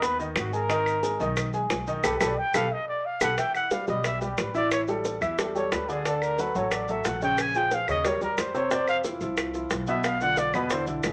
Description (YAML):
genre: Afro-Cuban jazz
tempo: 180 BPM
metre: 4/4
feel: straight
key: unclear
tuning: A4 = 441 Hz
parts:
  - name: breathy trumpet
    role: melody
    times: 0.0-11.1 s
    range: D#4 to G#5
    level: -30 LUFS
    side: equal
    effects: none
  - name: warm upright piano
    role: accompaniment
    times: 0.0-11.1 s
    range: B2 to B5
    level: -31 LUFS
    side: equal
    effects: none
  - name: upright bass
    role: bass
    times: 0.0-11.1 s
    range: G#1 to E#2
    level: -38 LUFS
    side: equal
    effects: none
  - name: bongos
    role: percussion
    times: 0.0-11.1 s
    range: none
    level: -34 LUFS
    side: equal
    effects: none
  - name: maracas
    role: percussion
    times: 0.0-11.1 s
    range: none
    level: -43 LUFS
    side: equal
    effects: none
  - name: claves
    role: percussion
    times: 0.4-11.1 s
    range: none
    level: -35 LUFS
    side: equal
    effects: none
room: wet club reverb, RT60 0.8 s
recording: none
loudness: -27 LUFS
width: mono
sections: 0.0-3.4 A section; 3.4-11.1 A section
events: trumpet solo 0.0-11.1; band accent 2.0-3.4; drum fill 2.7-3.4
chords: 0.0 G#madd9; 2.0 Bm7b13; 3.4 Em; 4.7 A5; 6.1 Dmaj7; 7.4 A#m7; 8.0 D#add9; 8.7 F5; 10.0 Bdim